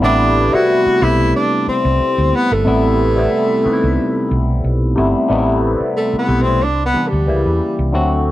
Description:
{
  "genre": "lush 1970s-style soul",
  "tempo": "91 BPM",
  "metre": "4/4",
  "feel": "swing 54% on 16ths",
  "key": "A dorian",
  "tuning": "A4 = 440 Hz",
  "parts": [
    { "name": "breathy tenor saxophone", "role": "melody", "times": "0.0-8.1 s", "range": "G3 to F#4", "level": "-16 LUFS", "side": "right 1 dB", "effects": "none" },
    { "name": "barky tine electric piano", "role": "accompaniment", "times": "0.0-8.3 s", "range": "C3 to B4", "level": "-17 LUFS", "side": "left 1 dB", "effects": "overdrive, phaser" },
    { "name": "hollow-body short-scale fingered electric bass", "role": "bass", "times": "0.0-8.3 s", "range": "G1 to E2", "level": "-17 LUFS", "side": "equal", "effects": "none" }
  ],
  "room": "light reverb, studio reverb",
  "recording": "none",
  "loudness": "-13 LUFS",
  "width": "side -15 dB against mid",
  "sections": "0.0-5.3 A section; 5.3-8.3 B section",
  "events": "tenor saxophone solo 5.3-8.3",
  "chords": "0.0 Am9; 6.6 Cmaj9; 7.3 C#dim7",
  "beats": "| 0.02 0.68 1.34 2.00 | 2.66 3.32 3.98 4.64 | 5.30 5.96 6.62 7.28 | 7.94"
}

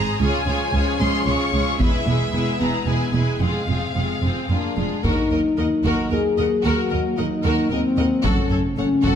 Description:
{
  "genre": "cinematic, epic orchestral film score",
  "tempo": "112 BPM",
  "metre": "3/4",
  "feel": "straight",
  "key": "unclear",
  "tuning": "A4 = 440 Hz",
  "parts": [
    { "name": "warm symphonic violin section", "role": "melody", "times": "0.0-9.2 s", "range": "A4 to Db6", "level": "-29 LUFS", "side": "left 3 dB", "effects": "none" },
    { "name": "clear symphonic violin section", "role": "second line", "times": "0.0-9.2 s", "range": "F4 to Eb5", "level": "-29 LUFS", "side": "left 2 dB", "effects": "none" },
    { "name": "rich studio viola section", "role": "accompaniment", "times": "0.0-9.2 s", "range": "Ab3 to Bb4", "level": "-28 LUFS", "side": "right 1 dB", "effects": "none" },
    { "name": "mellow French horn section", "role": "sustained chords", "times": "0.0-9.2 s", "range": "F3 to Ab4", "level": "-24 LUFS", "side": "left 4 dB", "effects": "none" },
    { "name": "rich symphonic double bass section", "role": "bass", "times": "0.0-9.1 s", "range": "E1 to Eb2", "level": "-25 LUFS", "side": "right 3 dB", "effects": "none" },
    { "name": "rich symphonic cello section", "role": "bass", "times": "0.2-9.1 s", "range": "Db2 to Gb2", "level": "-26 LUFS", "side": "right 2 dB", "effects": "none" },
    { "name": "taiko ensemble", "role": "drums", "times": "1.8-9.2 s", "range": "none", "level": "-24 LUFS", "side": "equal", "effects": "none" },
    { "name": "warm trombone section", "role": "sustained chords", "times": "5.1-9.2 s", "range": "Db3 to Bb3", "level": "-28 LUFS", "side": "right 4 dB", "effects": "none" }
  ],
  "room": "wet recital hall reverb, RT60 1.7 s",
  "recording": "none",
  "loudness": "-18 LUFS",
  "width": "side -8 dB against mid",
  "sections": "0.0-5.0 A section; 5.0-9.2 B section",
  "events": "none",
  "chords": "0.2 Db; 1.8 E; 3.4 Fm; 5.0 Ebm; 8.2 Gbm",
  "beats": "| 0.21 0.74 1.27 | 1.80 2.33 2.87 | 3.41 3.95 4.50 | 5.04 5.58 6.11 | 6.64 7.18 7.71 | 8.25 8.78"
}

